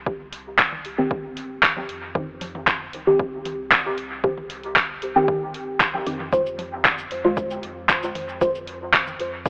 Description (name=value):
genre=dub techno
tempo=115 BPM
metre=4/4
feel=straight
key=C minor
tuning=A4 = 442 Hz
part: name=deep mellow chord stab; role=stabs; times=0.0-8.5 s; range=Eb3 to C5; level=-26 LUFS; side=equal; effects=chorus, phaser, vintage 12-bit sampler grit, dub echo
part: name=pure sine sub bass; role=bass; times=0.0-9.5 s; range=G1 to F2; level=-48 LUFS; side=equal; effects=sidechain pumping
part: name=electronic kick drum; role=drums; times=0.1-9.5 s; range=none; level=-32 LUFS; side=equal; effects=none
part: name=deep house drum kit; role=drums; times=0.3-9.5 s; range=handclaps, hi-hat, shaker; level=-23 LUFS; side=equal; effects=none
part: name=electronic toms and congas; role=percussion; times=0.7-9.2 s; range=none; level=-43 LUFS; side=equal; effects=sidechain pumping on toms, sidechain pumping on perc, dub echo
room=light reverb, digital ambience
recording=telephone sound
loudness=-23 LUFS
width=mono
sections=0.0-9.5 A section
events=none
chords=0.0 Cm; 6.3 Fm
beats=| 0.07 0.59 1.11 1.63 | 2.15 2.67 3.20 3.72 | 4.24 4.76 5.28 5.80 | 6.33 6.85 7.37 7.89 | 8.41 8.94 9.46